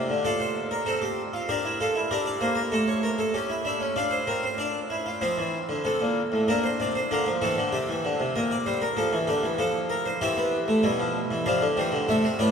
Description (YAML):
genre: classical, baroque-style 4-part fugue for harpsichord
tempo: 96 BPM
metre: 4/4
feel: straight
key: F major from 5.2 s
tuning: A4 = 439 Hz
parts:
  - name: harpsichord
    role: solo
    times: 0.0-12.5 s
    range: A2 to F5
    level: -23 LUFS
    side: equal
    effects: none
room: wet cathedral reverb, RT60 6.2 s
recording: in a vast, echoing space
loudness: -23 LUFS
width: side -6 dB against mid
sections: 0.0-5.2 A section; 5.2-12.5 B section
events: none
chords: 0.2 Dm/F; 1.5 Gm/D; 2.7 A7; 4.0 Dm; 5.2 F; 6.5 Bb; 7.7 C7; 9.0 F; 10.2 C/E; 11.4 F/C